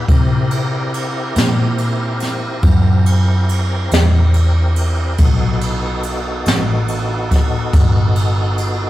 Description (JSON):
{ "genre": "slow blues", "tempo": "47 BPM (dotted quarters)", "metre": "12/8", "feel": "straight", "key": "unclear", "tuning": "A4 = 440 Hz", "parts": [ { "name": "tonewheel organ", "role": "sustained chords", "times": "0.0-8.9 s", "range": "B3 to Bb4", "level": "-23 LUFS", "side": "equal", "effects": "slow rotary speaker, chorus vibrato" }, { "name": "vintage muted fingered electric bass", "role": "bass", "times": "0.0-8.9 s", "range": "G1 to C3", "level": "-16 LUFS", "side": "equal", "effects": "none" }, { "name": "jazz brush drum kit", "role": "drums", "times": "0.1-8.8 s", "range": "kick drum, ride cymbal, snare drum", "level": "-17 LUFS", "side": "left 1 dB", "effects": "none" } ], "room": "light reverb", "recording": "rough rehearsal-room recording, warm saturation", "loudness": "-13 LUFS", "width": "side -15 dB against mid", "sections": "0.0-8.9 A section", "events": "none", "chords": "0.1 C7; 5.2 B7" }